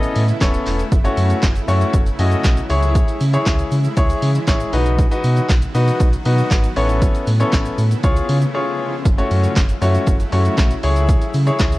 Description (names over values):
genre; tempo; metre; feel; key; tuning
dance-pop; 118 BPM; 4/4; straight; F# dorian; A4 = 440 Hz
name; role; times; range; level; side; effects
clear grand piano; accompaniment; 0.0-11.8 s; A3 to D#5; -21 LUFS; left 2 dB; none
shimmering ambient pad; sustained chords; 0.0-11.8 s; C#3 to F#4; -28 LUFS; right 1 dB; chorus, built-in reverb, sidechain pumping
sub bass with octave; bass; 0.0-11.8 s; D#1 to C#3; -18 LUFS; equal; sidechain pumping
punchy analog drum machine; drums; 0.0-11.8 s; handclaps, hi-hat, kick drum, shaker, snare drum; -18 LUFS; equal; none
egg shaker; percussion; 0.0-11.8 s; none; -44 LUFS; right 5 dB; none
room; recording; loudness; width
little or no reverb; worn, warbling old tape, cassette tape, warbly pitch drift; -14 LUFS; side -18 dB against mid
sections
0.0-9.1 A section; 9.1-11.8 A section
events
drop 0.0-9.1, 9.1-11.8; grand piano fill 0.2-0.9; break 8.5-9.1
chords
0.0 Aadd9; 0.9 F#m7; 2.7 C#m; 4.7 B; 6.8 Aadd9; 8.0 C#; 9.1 F#m7; 10.8 C#m